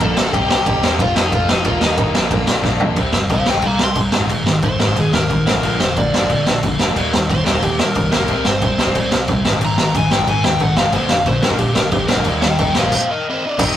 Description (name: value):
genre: punk rock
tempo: 181 BPM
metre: 4/4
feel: straight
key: C minor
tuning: A4 = 441 Hz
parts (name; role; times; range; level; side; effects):
- overdriven semi-hollow guitar; melody; 0.0-13.8 s; C4 to C6; -21 LUFS; left 1 dB; digital delay
- crunchy overdriven guitar; riff; 0.0-13.8 s; Ab2 to G4; -24 LUFS; right 3 dB; none
- distorted electric guitar; riff; 0.0-13.8 s; Ab2 to G4; -24 LUFS; left 3 dB; overdrive
- thick fuzz guitar; riff; 0.0-13.8 s; F2 to Eb4; -29 LUFS; equal; none
- overdriven picked electric bass; bass; 0.0-13.7 s; F1 to Bb2; -26 LUFS; equal; none
- raw garage drum kit; drums; 0.0-13.7 s; crash cymbal, kick drum, ride cymbal, snare drum, toms; -17 LUFS; equal; none
room: light reverb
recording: rough rehearsal-room recording, tube saturation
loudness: -14 LUFS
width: side -11 dB against mid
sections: 0.0-3.0 A section; 3.0-13.6 B section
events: drum fill 2.6-3.0; overdriven electric guitar solo 3.0-13.6; stop 12.9-13.6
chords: 0.3 Cm; 1.0 F; 1.6 Eb; 2.1 Bb; 3.0 C5; 4.1 Ab5; 5.6 Bb; 7.0 Eb; 8.3 C5; 9.5 Ab5; 10.9 Bb; 12.3 Eb